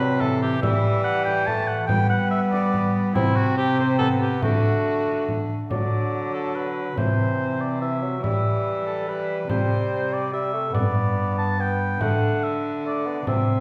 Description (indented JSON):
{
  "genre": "classical, renaissance-style consort dance",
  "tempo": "143 BPM",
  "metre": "3/4",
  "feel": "straight",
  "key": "D mixolydian",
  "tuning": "A4 = 440 Hz",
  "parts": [
    { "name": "warm oboe", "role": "melody", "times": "0.0-13.6 s", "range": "E4 to A5", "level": "-30 LUFS", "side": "equal", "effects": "none" },
    { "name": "clear bassoon", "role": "accompaniment", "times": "0.0-13.6 s", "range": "E3 to C4", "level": "-29 LUFS", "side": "equal", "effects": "none" },
    { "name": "rich cello", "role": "bass", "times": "0.0-13.6 s", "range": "G2 to G3", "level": "-28 LUFS", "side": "equal", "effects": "none" },
    { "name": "frame drum", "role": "percussion", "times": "0.0-13.5 s", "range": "none", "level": "-28 LUFS", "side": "equal", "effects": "none" }
  ],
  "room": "wet recital hall reverb, RT60 1.3 s",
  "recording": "heard from further back in the room",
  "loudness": "-23 LUFS",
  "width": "mono",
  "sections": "0.0-5.7 A section; 5.7-13.6 B section",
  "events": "none",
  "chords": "0.0 C; 0.6 Em; 1.9 G; 3.2 Cmaj7(no3); 4.4 D; 7.0 C; 8.2 Em; 9.5 C; 10.8 G; 12.0 D"
}